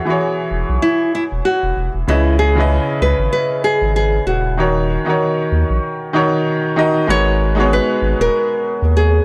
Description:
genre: sunset chillout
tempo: 96 BPM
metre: 4/4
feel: swing 57% on 16ths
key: G# minor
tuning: A4 = 445 Hz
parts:
  - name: nylon-string guitar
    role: melody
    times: 0.0-9.2 s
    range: E4 to C#5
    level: -20 LUFS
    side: equal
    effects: tape echo
  - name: clear grand piano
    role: accompaniment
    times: 0.0-9.2 s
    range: C#3 to D#5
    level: -20 LUFS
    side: equal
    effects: analog delay
  - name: round analog bass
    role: bass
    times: 0.5-9.2 s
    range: D#1 to D#2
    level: -19 LUFS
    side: equal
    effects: none
room: light reverb, small room ambience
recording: dry, gritty hardware recording, cassette tape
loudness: -16 LUFS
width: mono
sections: 0.0-7.1 A section; 7.1-9.2 B section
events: none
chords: 0.0 E69; 2.1 C#m7; 4.6 D#m7; 7.1 G#m11

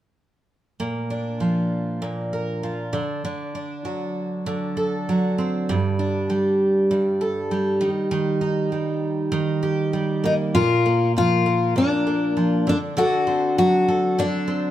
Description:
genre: pop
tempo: 99 BPM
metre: 4/4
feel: straight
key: Bb major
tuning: A4 = 438 Hz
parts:
  - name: picked twelve-string acoustic guitar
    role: accompaniment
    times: 0.8-14.7 s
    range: G2 to Bb4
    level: -22 LUFS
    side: right 2 dB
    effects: none
  - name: picked steel-string acoustic guitar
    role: melody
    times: 10.3-14.7 s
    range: D4 to F#4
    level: -19 LUFS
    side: left 2 dB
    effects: none
room: moderate stone room reverb, RT60 0.9 s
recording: band playing live in one room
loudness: -20 LUFS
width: side -12 dB against mid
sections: 0.8-10.5 A section; 10.5-14.7 B section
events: none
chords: 0.8 Bb; 2.9 D7; 5.7 Gsus2; 7.8 Eb; 10.5 Bb; 12.7 D7

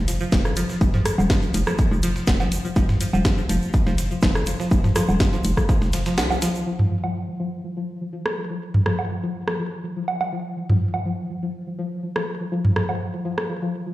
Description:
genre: minimal techno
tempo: 123 BPM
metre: 4/4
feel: straight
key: unclear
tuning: A4 = 440 Hz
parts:
  - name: hollow knocking FM bass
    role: bass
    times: 0.0-6.5 s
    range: Eb1 to C2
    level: -23 LUFS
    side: equal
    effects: sidechain pumping
  - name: string-like resonator pluck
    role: riff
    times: 0.1-13.9 s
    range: F3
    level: -27 LUFS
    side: left 1 dB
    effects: chorus, sidechain pumping, ping-pong delay
  - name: dusty soul sampler-style drum kit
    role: drums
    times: 0.1-6.5 s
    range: hi-hat, snare drum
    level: -37 LUFS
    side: equal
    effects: high-pass filter on hats, high-pass filter on snare
  - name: house drum kit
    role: drums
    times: 0.1-6.5 s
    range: hi-hat, snare drum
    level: -27 LUFS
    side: equal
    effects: none
  - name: egg shaker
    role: percussion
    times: 0.1-6.6 s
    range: none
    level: -38 LUFS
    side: right 2 dB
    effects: none
  - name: electronic kick drum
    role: drums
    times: 0.3-5.8 s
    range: none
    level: -20 LUFS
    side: equal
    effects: none
  - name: booming analog drum machine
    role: percussion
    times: 0.5-13.5 s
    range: rim click, toms, woodblock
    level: -24 LUFS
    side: right 1 dB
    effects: ping-pong delay
room: moderate plate reverb, RT60 1.4 s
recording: played on a big sound system in a bare room, large studio reverb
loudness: -20 LUFS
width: side -16 dB against mid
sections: 0.0-6.7 A section; 6.7-13.9 B section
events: kick drops out 6.2-6.7; band accent 6.2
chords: 0.0 F5

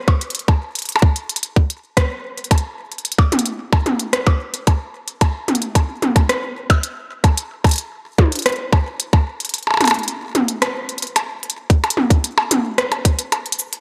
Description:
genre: IDM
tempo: 111 BPM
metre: 4/4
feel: straight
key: none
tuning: none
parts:
  - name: electronic kick drum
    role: drums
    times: 0.1-13.2 s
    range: none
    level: -16 LUFS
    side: equal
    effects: overdrive
  - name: glitchy drum kit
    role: drums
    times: 0.1-13.8 s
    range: cabasa, hi-hat, percussion blips, rim click, toms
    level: -21 LUFS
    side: equal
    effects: overdrive
room: moderate lush hall reverb, RT60 1.9 s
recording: bright 1980s-style digital production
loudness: -19 LUFS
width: mono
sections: 0.0-11.7 A section; 11.7-13.8 B section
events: kick drops out 9.5-11.7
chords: none

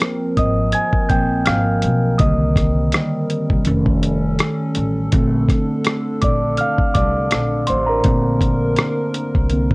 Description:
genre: lo-fi hip hop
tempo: 82 BPM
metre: 4/4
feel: swing 56% on 16ths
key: Bb major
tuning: A4 = 440 Hz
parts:
  - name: mellow tine electric piano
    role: accompaniment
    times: 0.0-9.7 s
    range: D3 to Ab6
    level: -19 LUFS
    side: right 1 dB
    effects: cassette tape, low-pass filter
  - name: hollow soft pad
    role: sustained chords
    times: 0.0-9.7 s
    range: D3 to Bb4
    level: -26 LUFS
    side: left 1 dB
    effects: chorus, low-pass filter
  - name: dusty soul sampler-style drum kit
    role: drums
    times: 0.0-9.7 s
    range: hi-hat, kick drum, rim click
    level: -18 LUFS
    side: equal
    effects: none
  - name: upright bass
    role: bass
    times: 0.4-9.7 s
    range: F1 to C2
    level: -21 LUFS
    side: equal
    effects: none
room: light reverb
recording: worn, warbling old tape, cassette tape, warbly pitch drift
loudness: -15 LUFS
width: side -26 dB against mid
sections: 0.0-9.7 A section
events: tine electric piano solo 0.0-9.7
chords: 0.0 Ab69; 2.2 Cm9; 3.7 Faug7; 5.1 Bbmaj7

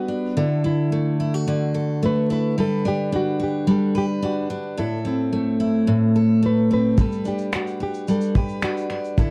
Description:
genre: acoustic pop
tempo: 109 BPM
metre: 4/4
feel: straight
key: G major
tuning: A4 = 445 Hz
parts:
  - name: nylon-string guitar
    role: melody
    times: 0.0-9.3 s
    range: E4 to B4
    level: -30 LUFS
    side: equal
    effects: analog delay
  - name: picked steel-string acoustic guitar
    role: accompaniment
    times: 0.0-9.3 s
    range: A2 to B4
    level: -22 LUFS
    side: equal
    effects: none
  - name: cloth-damped thuddy drum kit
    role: drums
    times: 7.0-9.3 s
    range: finger snaps, kick drum, shaker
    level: -23 LUFS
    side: equal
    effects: vintage 12-bit sampler grit
room: light reverb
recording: dark, warm production, vinyl crackle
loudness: -22 LUFS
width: mono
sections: 0.0-9.3 A section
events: none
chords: 0.4 Dadd9; 2.6 Gmaj7; 4.8 Am; 7.0 Gmaj7

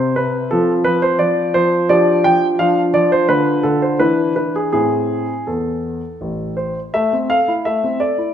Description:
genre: classical-period piano sonatina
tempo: 84 BPM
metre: 3/4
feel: uneven beats, rubato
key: A minor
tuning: A4 = 440 Hz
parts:
  - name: warm grand piano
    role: solo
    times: 0.0-8.3 s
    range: A1 to G5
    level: -14 LUFS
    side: equal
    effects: none
room: moderate recital hall reverb, RT60 1.4 s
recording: none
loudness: -14 LUFS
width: side -9 dB against mid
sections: 0.0-6.9 A section; 6.9-8.3 B section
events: none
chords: 0.5 F5; 1.9 G5/F; 2.6 Dm/F; 3.3 Dm; 4.0 E5; 4.7 Am

